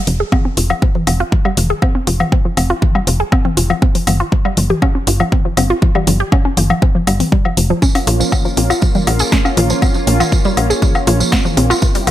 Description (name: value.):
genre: melodic techno.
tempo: 120 BPM.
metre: 4/4.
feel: straight.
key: F harmonic minor.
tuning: A4 = 440 Hz.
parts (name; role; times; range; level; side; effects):
wide unison pluck; arpeggios; 0.0-12.1 s; E3 to Ab4; -18 LUFS; equal; vintage 12-bit sampler grit, sidechain pumping, ping-pong delay.
tight sequencer bass; bass; 0.1-12.1 s; F1 to C2; -15 LUFS; equal; tube saturation, sidechain pumping.
techno drum kit; drums; 0.1-12.1 s; hi-hat, snare drum, toms, woodblock; -19 LUFS; left 2 dB; overdrive, sidechain pumping on hats, sidechain pumping on perc, sidechain pumping on toms.
electronic kick drum; drums; 0.3-11.9 s; none; -14 LUFS; equal; none.
lush unison pad; sustained chords; 7.8-12.1 s; C3 to G4; -20 LUFS; equal; chorus, sidechain pumping.
tambourine; percussion; 7.8-12.0 s; none; -24 LUFS; right 4 dB; none.
room: light reverb, digital ambience.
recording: none.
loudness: -12 LUFS.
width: side -13 dB against mid.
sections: 0.0-12.1 A section.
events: filter sweep on synth arpeggio sound 0.0-12.1.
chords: 0.0 F5; 3.8 Fsus2; 7.8 Bbm.